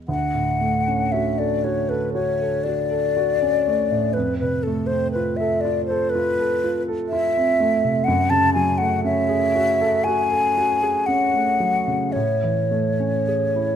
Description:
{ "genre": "classical, impressionist duo for flute and grand piano", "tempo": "60 BPM", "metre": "4/4", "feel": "uneven beats, rubato", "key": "unclear", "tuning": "A4 = 440 Hz", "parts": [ { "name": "dark grand piano", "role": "accompaniment", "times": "0.0-13.8 s", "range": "D2 to A4", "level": "-23 LUFS", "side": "right 2 dB", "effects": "none" }, { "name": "mellow hollow concert flute", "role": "melody", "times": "0.1-13.8 s", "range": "A4 to A5", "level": "-20 LUFS", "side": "left 2 dB", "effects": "none" } ], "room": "light reverb", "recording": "close, detailed microphones", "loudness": "-18 LUFS", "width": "side -9 dB against mid", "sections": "0.1-13.8 A section", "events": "none", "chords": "0.1 Dmaj7; 4.1 Fmaj7; 8.1 F#m9; 12.1 Amaj7" }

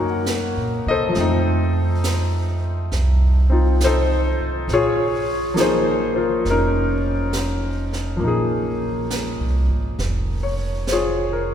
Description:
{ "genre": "jazz ballad", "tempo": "68 BPM", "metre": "4/4", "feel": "swing 67% on 8ths", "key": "Bb minor", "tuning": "A4 = 440 Hz", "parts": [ { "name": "bright baby grand piano", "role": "accompaniment", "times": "0.0-11.5 s", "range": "Eb3 to Ab5", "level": "-21 LUFS", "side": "left 2 dB", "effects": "none" }, { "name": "upright bass", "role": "bass", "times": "0.0-11.5 s", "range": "F1 to C3", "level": "-21 LUFS", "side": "right 1 dB", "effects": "none" }, { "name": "jazz brush drum kit", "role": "drums", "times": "0.3-11.5 s", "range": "brushed snare drum, hi-hat, snare drum", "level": "-32 LUFS", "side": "right 3 dB", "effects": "none" } ], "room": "wet church reverb, RT60 3.0 s", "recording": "recorded in a church or concert hall", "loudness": "-18 LUFS", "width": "side -9 dB against mid", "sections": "0.0-11.5 A section", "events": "none", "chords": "0.0 Ebm9; 1.1 F7; 4.7 Bbm11" }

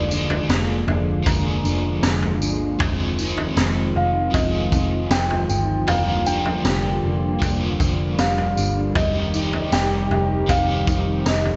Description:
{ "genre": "dream pop", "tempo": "78 BPM", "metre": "4/4", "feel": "straight", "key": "F dorian", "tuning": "A4 = 444 Hz", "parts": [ { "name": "felt-muted upright piano", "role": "melody", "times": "0.0-11.6 s", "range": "D5 to G5", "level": "-28 LUFS", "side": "equal", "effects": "delay" }, { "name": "overdriven semi-hollow guitar", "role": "accompaniment", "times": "0.0-11.6 s", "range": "F3 to Ab4", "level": "-32 LUFS", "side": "equal", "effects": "tremolo, lush chorus" }, { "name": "hollow soft pad", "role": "sustained chords", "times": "0.0-11.6 s", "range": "C3 to G4", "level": "-28 LUFS", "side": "equal", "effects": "chorus" }, { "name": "mellow electric guitar", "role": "arpeggios", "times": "0.0-11.6 s", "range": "F3 to Ab4", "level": "-32 LUFS", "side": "equal", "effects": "ensemble chorus, delay" }, { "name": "vintage muted picked electric bass", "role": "bass", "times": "0.0-11.6 s", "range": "F1 to G1", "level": "-26 LUFS", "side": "equal", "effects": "none" }, { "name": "raw garage drum kit", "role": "drums", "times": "0.1-11.6 s", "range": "kick drum, snare drum, tambourine, toms", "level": "-27 LUFS", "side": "equal", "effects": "none" }, { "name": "small celesta", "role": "texture", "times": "1.3-11.6 s", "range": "F5 to Bb5", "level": "-42 LUFS", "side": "equal", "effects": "none" } ], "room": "moderate lush hall reverb, RT60 2.8 s", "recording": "dreamy mix soaked in reverb, nothing above 8.0 kHz", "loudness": "-21 LUFS", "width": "mono", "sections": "0.0-11.6 A section", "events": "none", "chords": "0.0 Bb7/F; 2.8 Fm7; 5.9 Gm7/F; 9.0 Cm/F" }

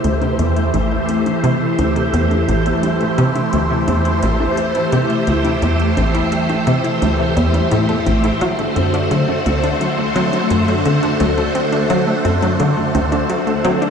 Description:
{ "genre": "ambient, sequencer-driven space music", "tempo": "86 BPM", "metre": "4/4", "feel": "straight", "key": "A dorian", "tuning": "A4 = 440 Hz", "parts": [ { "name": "phased string machine", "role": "sustained chords", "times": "0.0-13.9 s", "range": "D3 to C5", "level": "-17 LUFS", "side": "equal", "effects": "ensemble chorus, phaser" }, { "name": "wide unison pluck", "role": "arpeggios", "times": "0.0-13.9 s", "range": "F#3 to A4", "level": "-25 LUFS", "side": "left 1 dB", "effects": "auto-pan, tape echo" }, { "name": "tight sequencer bass", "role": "riff", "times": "0.0-13.8 s", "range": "A1 to F#3", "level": "-18 LUFS", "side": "equal", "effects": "wide subtle chorus, tape echo" }, { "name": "electronic hi-hat and bongos", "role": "percussion", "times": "0.0-13.9 s", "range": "none", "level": "-32 LUFS", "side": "left 1 dB", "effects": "tape echo" }, { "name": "wind-like tuned noise texture", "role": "texture", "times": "0.0-13.9 s", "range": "E5", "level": "-26 LUFS", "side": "right 1 dB", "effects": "built-in reverb" } ], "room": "wet shimmer reverb, RT60 8.3 s", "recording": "played on a big sound system in a bare room, large studio reverb", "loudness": "-14 LUFS", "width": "side -6 dB against mid", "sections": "0.0-13.9 A section", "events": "fade-in on synth arpeggio sound 0.0-13.9", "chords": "0.0 Am7; 8.4 D7" }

